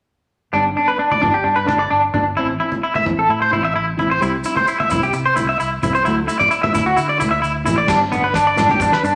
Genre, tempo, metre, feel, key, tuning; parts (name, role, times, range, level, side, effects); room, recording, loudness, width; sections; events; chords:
highlife guitar band; 131 BPM; 4/4; straight; G major; A4 = 440 Hz
nylon-string guitar; accompaniment; 0.5-9.2 s; E3 to E4; -28 LUFS; equal
electric guitar at the edge of break-up; arpeggios; 0.5-9.1 s; B3 to E5; -18 LUFS; equal; tremolo
fingered electric bass; bass; 0.5-9.1 s; G1 to D3; -28 LUFS; equal
congas; percussion; 1.1-8.9 s; -28 LUFS; equal
maracas; percussion; 4.2-9.2 s; -38 LUFS; equal
warm soul drum kit; drums; 7.9-9.0 s; crash cymbal, kick drum, snare drum; -27 LUFS; equal
wet large studio reverb, RT60 1.2 s; -17 LUFS; mono
0.5-7.9 A section; 7.9-9.2 B section
0.5 G; 2.4 Am; 4.2 C; 6.1 Dsus2; 7.9 G